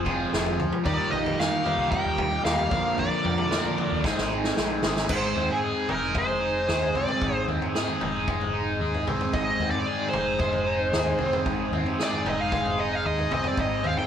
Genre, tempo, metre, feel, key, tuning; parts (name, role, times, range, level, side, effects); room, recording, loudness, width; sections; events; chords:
psychedelic rock; 113 BPM; 4/4; straight; Ab lydian; A4 = 440 Hz
dark smooth lead guitar; melody; 0.0-14.1 s; Ab4 to G5; -27 LUFS; equal; wah, overdrive
tonewheel organ; sustained chords; 0.0-14.1 s; Ab3 to Bb4; -36 LUFS; right 4 dB
crunchy overdriven guitar; riff; 0.0-14.1 s; Ab2 to Bb4; -27 LUFS; left 1 dB; phaser
woody fretless electric bass; bass; 0.0-14.1 s; F1 to Ab2; -33 LUFS; equal
vintage drum kit; drums; 0.1-14.1 s; crash cymbal, kick drum, snare drum, toms; -30 LUFS; equal
deep rumbling drone; drone; 7.2-14.1 s; Ab2; -40 LUFS; right 2 dB
moderate studio reverb, RT60 0.8 s; band playing live in one room; -23 LUFS; side -8 dB against mid
0.0-5.1 A section; 5.1-14.1 B section
drum fill 4.0-5.1; lead electric guitar solo 5.1-14.1
0.0 Fm; 0.9 Ebadd9; 2.7 Bb; 4.0 Ab